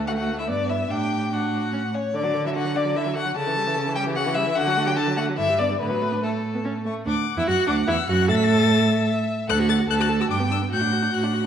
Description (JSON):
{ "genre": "quick classical-period movement for string quartet", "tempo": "147 BPM", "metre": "3/4", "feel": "straight", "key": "D major", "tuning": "A4 = 442 Hz", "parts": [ { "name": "warm violin", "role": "melody", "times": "0.0-11.5 s", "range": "A3 to B6", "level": "-28 LUFS", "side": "left 9 dB", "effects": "none" }, { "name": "rich viola", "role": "accompaniment", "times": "0.0-11.5 s", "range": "C#3 to A4", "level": "-27 LUFS", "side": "right 2 dB", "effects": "none" }, { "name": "rich cello", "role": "bass", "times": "0.0-11.5 s", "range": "D2 to D3", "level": "-24 LUFS", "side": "right 3 dB", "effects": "none" }, { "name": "rich violin", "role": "second line", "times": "0.1-11.5 s", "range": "A4 to A5", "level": "-26 LUFS", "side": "left 4 dB", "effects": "none" } ], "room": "wet recital hall reverb, RT60 1.5 s", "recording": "dark, warm production", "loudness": "-20 LUFS", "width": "side -8 dB against mid", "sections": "0.0-7.1 A section; 7.1-11.5 A section", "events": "none", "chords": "0.5 G; 0.9 D/A; 1.7 A; 2.1 D; 3.4 A7/C#; 4.6 D; 5.4 G; 5.8 D/A; 6.6 N.C.; 7.1 D; 8.3 A5; 9.5 D; 10.3 G; 10.7 D/A", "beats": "0.08 0.49 | 0.90 1.31 1.73 | 2.14 2.55 2.96 | 3.36 3.76 4.16 | 4.57 4.97 5.38 | 5.80 6.22 6.64 | 7.07 7.47 7.88 | 8.28 8.69 9.09 | 9.49 9.89 10.30 | 10.72 11.14" }